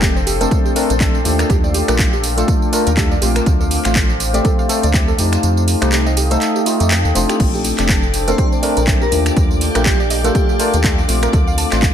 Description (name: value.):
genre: deep house.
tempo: 122 BPM.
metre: 4/4.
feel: swing 57% on 16ths.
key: Bb major.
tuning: A4 = 443 Hz.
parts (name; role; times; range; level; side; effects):
deep dark ambient pad; sustained chords; 0.0-11.9 s; A4 to Eb6; -26 LUFS; left 1 dB; chorus, built-in reverb, sidechain pumping.
soft round pluck; arpeggios; 0.0-11.8 s; G4 to A5; -26 LUFS; right 5 dB; chorus, sidechain pumping, dub echo.
tine electric piano; stabs; 0.0-11.9 s; A3 to Bb4; -20 LUFS; left 2 dB; lush chorus, sidechain pumping, dub echo.
round analog bass; bass; 0.0-11.9 s; F1 to F2; -18 LUFS; equal; sidechain pumping.
electronic kick drum; drums; 0.0-11.9 s; none; -16 LUFS; equal; overdrive.
house drum kit; drums; 0.0-11.9 s; crash cymbal, finger snaps, handclaps, hi-hat, tambourine; -21 LUFS; right 1 dB; overdrive.
airy breathy pad; texture; 0.0-11.9 s; D4 to G5; -26 LUFS; left 1 dB; chorus, sidechain pumping.
rich studio violin section; texture; 7.4-11.9 s; D5 to D6; -31 LUFS; left 4 dB; sidechain pumping.
airy dreamy lead; melody; 8.3-10.9 s; G4 to C5; -24 LUFS; equal; chorus, phaser, dub echo.
room: light reverb, digital ambience.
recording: none.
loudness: -13 LUFS.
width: side -9 dB against mid.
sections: 0.0-11.9 A section.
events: kick drops out 5.4-7.4.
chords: 0.0 Bbmaj13; 1.3 Ebmaj9#11; 3.5 Dm7; 5.2 F9; 7.4 Bbmaj13; 9.1 Ebmaj9#11; 11.3 Dm7.